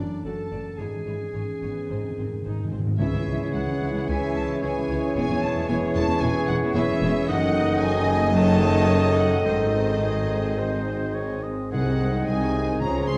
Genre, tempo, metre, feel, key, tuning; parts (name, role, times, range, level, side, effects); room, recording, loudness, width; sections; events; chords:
classical, dramatic, fast romantic movement for symphony orchestra; 110 BPM; 4/4; rubato; C# minor; A4 = 440 Hz
warm symphonic violin section; melody; 0.0-13.2 s; B#4 to C6; -38 LUFS; equal
bright clarinet; second line; 0.0-13.2 s; Db4 to A4; -36 LUFS; equal
rich symphonic violin section; second line; 0.0-13.2 s; C4 to A5; -40 LUFS; equal
rich symphonic viola section; accompaniment; 0.0-13.2 s; G#3 to E5; -38 LUFS; equal
concert harp; arpeggios; 0.0-13.2 s; E2 to F#5; -35 LUFS; equal
clear symphonic double bass section; bass; 0.0-13.2 s; E1 to C#2; -34 LUFS; equal
dark symphonic cello section; bass; 0.0-13.2 s; C2 to G#2; -31 LUFS; equal
timpani; percussion; 0.8-3.8, 12.8-13.2 s; G#2 to C#3; -32 LUFS; equal
concert flute; second line; 3.0-13.2 s; D#5 to C6; -36 LUFS; equal
warm oboe; second line; 3.0-13.2 s; Ab4 to D#5; -38 LUFS; equal
mellow bassoon; accompaniment; 3.0-13.2 s; D#3 to F3; -35 LUFS; equal
bright trombone section; sustained chords; 3.0-13.2 s; D#3 to G#3; -36 LUFS; equal
warm French horn section; sustained chords; 3.0-13.2 s; A3 to A4; -32 LUFS; equal
clear trumpet section; stabs; 3.0-13.2 s; C#5 to D#5; -33 LUFS; equal
mellow tuba; bass; 3.0-13.2 s; E1 to C#2; -33 LUFS; equal
wet recital hall reverb, RT60 1.4 s; dark, warm production, nothing above 10.9 kHz; -24 LUFS; mono
0.0-3.0 A section; 3.0-13.2 B section
timpani fill 1.9-3.0
0.0 D/F#; 0.8 C#m/G#; 1.9 G#; 3.0 C#m; 5.2 C#m/E; 7.3 D#dim/F#; 9.5 G#; 11.7 Ab7/C